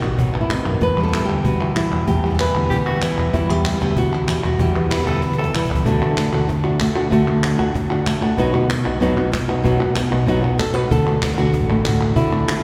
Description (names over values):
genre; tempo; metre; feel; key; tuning
flamenco; 190 BPM; 4/4; straight; unclear; A4 = 442 Hz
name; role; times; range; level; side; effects
flamenco guitar; melody; 0.0-12.6 s; E2 to B4; -22 LUFS; equal; none
flamenco guitar; stabs; 0.0-12.6 s; B2 to F#4; -29 LUFS; equal; none
fingered electric bass; bass; 0.0-12.6 s; A1 to E3; -24 LUFS; equal; none
palmas hand claps; percussion; 0.0-12.6 s; none; -30 LUFS; equal; none
cajon; percussion; 0.2-12.6 s; none; -28 LUFS; equal; none
edgy soprano saxophone; second line; 2.7-5.9 s; E4 to B4; -32 LUFS; equal; none
room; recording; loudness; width
wet church reverb, RT60 3.5 s; recorded in a church or concert hall; -19 LUFS; mono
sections
0.0-5.9 A section; 5.9-10.9 B section; 10.9-12.6 C section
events
drum fill 5.2-5.9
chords
0.0 B; 0.8 Em; 5.9 D; 8.4 B; 10.9 D